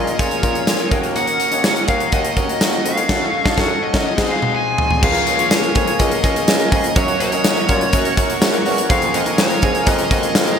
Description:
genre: 1980s-style pop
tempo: 124 BPM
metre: 4/4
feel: straight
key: Db major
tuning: A4 = 440 Hz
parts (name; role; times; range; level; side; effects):
- dark smooth lead guitar; melody; 0.0-10.6 s; Db5 to Ab5; -20 LUFS; left 2 dB; overdrive, ping-pong delay
- clear grand piano; accompaniment; 0.0-10.6 s; Bb3 to Eb5; -24 LUFS; left 3 dB; none
- crunchy overdriven guitar; accompaniment; 0.0-10.6 s; Bb2 to Ab4; -29 LUFS; equal; none
- chorused pulse-width pad; sustained chords; 0.0-10.6 s; Gb4 to Db6; -26 LUFS; right 1 dB; none
- direct-recorded clean electric guitar; riff; 0.0-10.6 s; Eb3 to Ab4; -27 LUFS; right 5 dB; analog chorus
- mellow bassoon; bass; 0.0-10.6 s; Db2 to Bb2; -24 LUFS; equal; none
- big rock drum kit; drums; 0.1-10.6 s; crash cymbal, hi-hat, kick drum, snare drum, tambourine, toms; -18 LUFS; equal; gated reverb
- tambourine; percussion; 0.2-10.5 s; none; -34 LUFS; left 6 dB; none
room: wet lush hall reverb, RT60 2.0 s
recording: bright 1980s-style digital production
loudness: -14 LUFS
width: side -7 dB against mid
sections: 0.0-5.0 A section; 5.0-10.6 B section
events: lead electric guitar solo 0.0-5.0; band accent 3.1-5.0; drum fill 4.1-5.0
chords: 0.0 Bbm7; 0.9 Ebm7; 3.1 Gbm6; 4.1 Ab7; 5.0 Db6; 7.0 Gb; 8.9 Db6/F

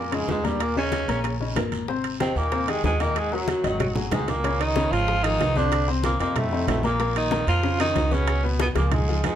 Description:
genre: Afro-Cuban jazz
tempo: 188 BPM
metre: 4/4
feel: straight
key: Ab major, Db major from 4.4 s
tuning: A4 = 440 Hz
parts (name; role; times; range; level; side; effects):
- growling tenor saxophone; melody; 0.0-9.4 s; Gb3 to F4; -26 LUFS; right 1 dB; none
- warm baritone saxophone; second line; 0.0-9.4 s; Gb2 to F3; -32 LUFS; right 4 dB; none
- clear upright piano; accompaniment; 0.0-9.3 s; Bb2 to Eb5; -28 LUFS; left 5 dB; none
- upright bass; bass; 0.0-9.4 s; Ab1 to F2; -27 LUFS; right 1 dB; none
- bongos; percussion; 0.1-9.3 s; none; -33 LUFS; left 6 dB; none
- congas; percussion; 0.1-9.4 s; none; -32 LUFS; left 1 dB; none
- timbales; percussion; 0.1-9.4 s; none; -33 LUFS; right 10 dB; none
- guiro; percussion; 0.3-9.4 s; none; -40 LUFS; right 6 dB; none
room: moderate studio reverb, RT60 0.6 s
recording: dark, warm production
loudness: -21 LUFS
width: side -10 dB against mid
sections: 0.0-4.4 A section; 4.4-9.4 B section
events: drum fill 3.6-4.4, 8.6-9.4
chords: 0.0 Bbm; 0.6 Eb5; 1.9 Abmaj9; 3.2 Ebm; 3.8 Ab5; 4.4 Dbadd9; 5.7 Cmadd11; 6.4 F7; 7.0 Bbm; 8.3 Db6

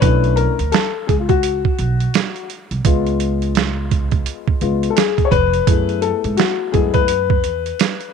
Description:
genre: hip hop, jazz-hop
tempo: 85 BPM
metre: 4/4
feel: swing 62% on 16ths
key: B dorian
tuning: A4 = 440 Hz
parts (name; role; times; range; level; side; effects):
- dark grand piano; accompaniment; 0.0-8.1 s; G#3 to C#5; -19 LUFS; left 14 dB; none
- upright bass; bass; 0.0-7.7 s; E#1 to G#2; -20 LUFS; right 2 dB; none
- boom bap sampler-style drum kit; drums; 0.0-8.1 s; hi-hat, kick drum, snare drum; -18 LUFS; right 6 dB; none
room: little or no reverb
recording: 1960s-style stereo with parts hard left and right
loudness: -15 LUFS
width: side -6 dB against mid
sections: 0.0-8.1 A section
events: grand piano solo 0.0-8.1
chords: 0.0 Bm11; 2.9 C#7; 5.7 F#m11

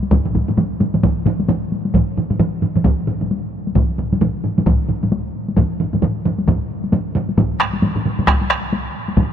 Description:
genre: japanese traditional, taiko drum ensemble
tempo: 133 BPM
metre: 4/4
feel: swing 60% on 16ths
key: none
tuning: none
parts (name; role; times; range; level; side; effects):
- solo taiko drums; percussion; 0.0-9.3 s; none; -22 LUFS; left 3 dB; none
- taiko ensemble; percussion; 0.1-9.3 s; none; -22 LUFS; left 3 dB; none
- taiko ensemble; percussion; 0.1-9.3 s; none; -21 LUFS; right 5 dB; none
- taiko ensemble; percussion; 0.1-9.3 s; none; -23 LUFS; equal; none
room: wet cathedral reverb, RT60 6.0 s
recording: in a vast, echoing space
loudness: -16 LUFS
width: side -9 dB against mid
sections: 0.0-1.9 A section; 1.9-9.3 B section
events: none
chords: none

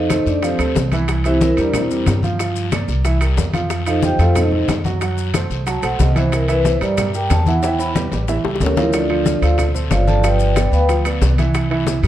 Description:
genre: Afro-Cuban jazz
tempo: 184 BPM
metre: 4/4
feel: straight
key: C mixolydian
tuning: A4 = 439 Hz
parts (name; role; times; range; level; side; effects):
- vibraphone with medium mallets; melody; 0.0-12.1 s; C4 to B5; -19 LUFS; equal; none
- warm concert grand piano; accompaniment; 0.0-12.1 s; E3 to F#5; -23 LUFS; right 3 dB; none
- upright bass; bass; 0.0-12.1 s; G1 to G2; -18 LUFS; equal; none
- bongos; percussion; 0.1-12.0 s; none; -28 LUFS; left 6 dB; none
- congas; percussion; 0.1-12.1 s; none; -24 LUFS; left 3 dB; none
- guiro; percussion; 0.1-12.1 s; none; -34 LUFS; left 8 dB; none
- maracas; percussion; 0.1-12.1 s; none; -36 LUFS; left 9 dB; none
- timbales; percussion; 0.1-12.1 s; none; -28 LUFS; right 4 dB; none
room: light reverb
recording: dark, warm production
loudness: -15 LUFS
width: side -12 dB against mid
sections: 0.0-12.1 A section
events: vibraphone solo 0.0-12.1; drum fill 7.6-8.9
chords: 0.0 F9; 1.1 C9; 2.4 Gm7; 3.1 C7; 3.7 F9; 5.0 F#dim; 6.3 C7; 7.6 Em; 8.3 A7b9; 8.9 Dm7; 10.2 G7; 11.5 C

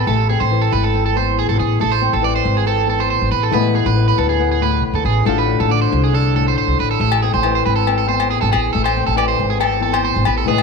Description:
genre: highlife guitar band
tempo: 139 BPM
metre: 4/4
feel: straight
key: A harmonic minor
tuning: A4 = 440 Hz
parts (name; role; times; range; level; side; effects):
- flamenco guitar; accompaniment; 0.0-10.6 s; E2 to B4; -20 LUFS; left 12 dB; none
- electric guitar at the edge of break-up; arpeggios; 0.0-10.6 s; G#4 to D5; -19 LUFS; right 10 dB; wide subtle chorus
- upright bass; bass; 0.0-10.6 s; G#1 to D2; -18 LUFS; equal; none
- agogo bells; percussion; 7.1-10.6 s; none; -22 LUFS; left 12 dB; none
room: moderate echo chamber reverb, RT60 1.7 s, small room ambience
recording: 1960s-style stereo with parts hard left and right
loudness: -14 LUFS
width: side -4 dB against mid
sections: 0.1-10.6 A section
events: none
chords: 0.1 Am; 3.5 E/A; 5.3 Dm/A; 7.0 Am

